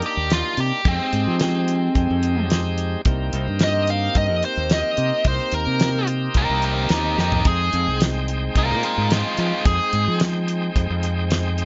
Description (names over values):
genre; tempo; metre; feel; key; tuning
straight-eighth soul blues; 109 BPM; 4/4; straight; unclear; A4 = 441 Hz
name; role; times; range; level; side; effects
bright tonewheel organ; accompaniment; 0.0-11.7 s; Ab3 to G5; -30 LUFS; equal; slow rotary speaker, overdrive
damped 70s drum kit; drums; 0.0-11.7 s; hi-hat, kick drum, snare drum, toms; -24 LUFS; equal; none
biting lead guitar; melody; 0.1-10.2 s; Ab3 to F5; -24 LUFS; equal; overdrive
modern bright fingered electric bass; bass; 0.2-11.7 s; C2 to F3; -25 LUFS; equal; none
room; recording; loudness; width
little or no reverb; nothing above 7.6 kHz; -21 LUFS; mono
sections
0.0-11.7 A section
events
lead electric guitar solo 0.0-11.7; drum fill 7.2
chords
0.0 Cm7; 0.9 Fm7; 3.1 Cm7; 7.5 Fm7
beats
0.30 | 0.85 1.40 1.95 2.50 | 3.05 3.60 4.16 4.71 | 5.25 5.80 6.36 6.91 | 7.46 8.01 8.56 9.11 | 9.66 10.21 10.76 11.31